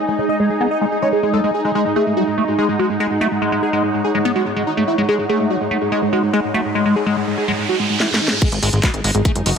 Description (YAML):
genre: psychedelic trance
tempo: 144 BPM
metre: 4/4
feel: straight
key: unclear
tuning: A4 = 440 Hz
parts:
  - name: wide unison lead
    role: melody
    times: 0.0-9.5 s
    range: G#3 to D#5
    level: -20 LUFS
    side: equal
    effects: phaser, sidechain pumping, tape echo
  - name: swarming drone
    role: sustained chords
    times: 0.0-9.6 s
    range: D#4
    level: -25 LUFS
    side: right 1 dB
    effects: built-in reverb, vintage 12-bit sampler grit, sidechain pumping
  - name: airy breathy pad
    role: texture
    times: 0.0-7.6 s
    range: G#3 to G#5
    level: -24 LUFS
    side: right 2 dB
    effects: chorus, sidechain pumping
  - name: liquid acid bass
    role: riff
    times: 0.1-9.5 s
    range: F#3 to B3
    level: -21 LUFS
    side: left 1 dB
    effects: phaser, auto-pan, sidechain pumping, ping-pong delay
  - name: riser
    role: sound effects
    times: 6.1-8.4 s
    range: none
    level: -25 LUFS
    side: right 2 dB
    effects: none
  - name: garage drum kit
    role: drums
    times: 8.0-9.5 s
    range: crash cymbal, handclaps, hi-hat, snare drum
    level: -20 LUFS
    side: equal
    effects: low-pass filter on snare, low-pass filter on hats, low-pass filter on cymbals, low-pass filter on room
  - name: electronic kick drum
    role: drums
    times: 8.4-9.3 s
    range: none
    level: -17 LUFS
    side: equal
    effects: none
  - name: plucky analog bass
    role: bass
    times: 8.5-9.5 s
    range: F#1 to G#1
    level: -18 LUFS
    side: equal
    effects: tube saturation
room: moderate lush hall reverb, RT60 2.3 s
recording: none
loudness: -15 LUFS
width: side -6 dB against mid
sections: 0.0-8.4 A section; 8.4-9.6 B section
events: filter sweep on acid bass 0.0-8.4; riser 6.1-8.4; drum fill 8.0-8.4; drop 8.4-9.6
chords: 0.0 G#5